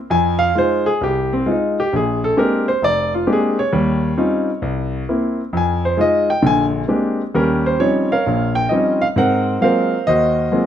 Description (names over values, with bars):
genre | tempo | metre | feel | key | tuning
jazz | 132 BPM | 4/4 | swing 66% on 8ths | Eb mixolydian | A4 = 440 Hz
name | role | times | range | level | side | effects
warm grand piano | solo | 0.1-10.7 s | F1 to Ab5 | -15 LUFS | equal | none
room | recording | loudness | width
moderate large studio reverb, RT60 0.9 s | dark, warm production | -15 LUFS | side -10 dB against mid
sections
0.0-7.3 A section; 7.3-10.7 B section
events
grand piano solo 0.0-7.3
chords
0.1 Fm7; 1.9 Bb13; 3.7 Eb13; 4.6 C7; 5.5 Fm7; 6.4 Bb13; 7.3 Eb13; 9.2 Ab13